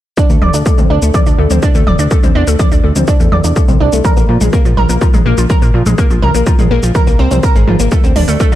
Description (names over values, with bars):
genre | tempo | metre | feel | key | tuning
melodic techno | 124 BPM | 4/4 | straight | D minor | A4 = 440 Hz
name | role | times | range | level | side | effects
analog pluck | arpeggios | 0.2-8.6 s | F3 to D5 | -15 LUFS | equal | chorus, sidechain pumping, ping-pong delay
electronic kick drum | drums | 0.2-8.5 s | none | -11 LUFS | equal | none
techno drum kit | drums | 0.2-8.6 s | hi-hat, shaker, toms | -19 LUFS | right 1 dB | none
fat analog bass | bass | 0.3-8.6 s | D1 to Bb2 | -13 LUFS | equal | sidechain pumping
room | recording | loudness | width
digital ambience | none | -9 LUFS | side -13 dB against mid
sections
0.2-8.6 A section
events
none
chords
0.2 D5; 4.0 Bbsus2; 7.9 D5